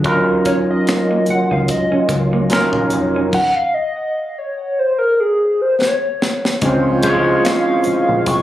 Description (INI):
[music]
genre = R&B, neo-soul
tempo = 73 BPM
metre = 4/4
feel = swing 55% on 16ths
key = Eb dorian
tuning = A4 = 440 Hz
[part]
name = overdriven tine electric piano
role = accompaniment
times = 0.0-8.4 s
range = Gb3 to Db5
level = -16 LUFS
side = equal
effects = analog chorus
[part]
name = tonewheel organ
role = sustained chords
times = 0.0-8.4 s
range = Eb3 to F4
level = -22 LUFS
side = right 2 dB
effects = fast rotary speaker, overdrive, chorus vibrato
[part]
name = deep dub fingered electric bass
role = bass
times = 0.0-8.4 s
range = F1 to Eb2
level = -22 LUFS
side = equal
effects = none
[part]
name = tight funk drum kit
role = drums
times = 0.0-8.4 s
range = crash cymbal, finger snaps, hi-hat, kick drum, snare drum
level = -21 LUFS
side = equal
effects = none
[part]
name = hollow square lead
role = melody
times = 0.5-8.4 s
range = Ab4 to Db6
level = -18 LUFS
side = left 1 dB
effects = chorus, tape echo
[part]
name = electric guitar through a small old amp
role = second line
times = 0.5-3.3 s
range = Bb3 to Eb4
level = -23 LUFS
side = right 5 dB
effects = none
[part]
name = clear horn section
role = stabs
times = 6.6-8.4 s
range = Ab2 to Db4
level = -24 LUFS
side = right 2 dB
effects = none
[sound]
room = light reverb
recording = recorded on a phone in the room, club reverb, compression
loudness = -14 LUFS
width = side -13 dB against mid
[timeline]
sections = 0.0-6.6 A section; 6.6-8.4 B section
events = analog synth lead solo 0.0-6.6; drum fill 5.8-6.6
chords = 0.0 Ebm9; 3.3 N.C.; 6.6 Dbmaj7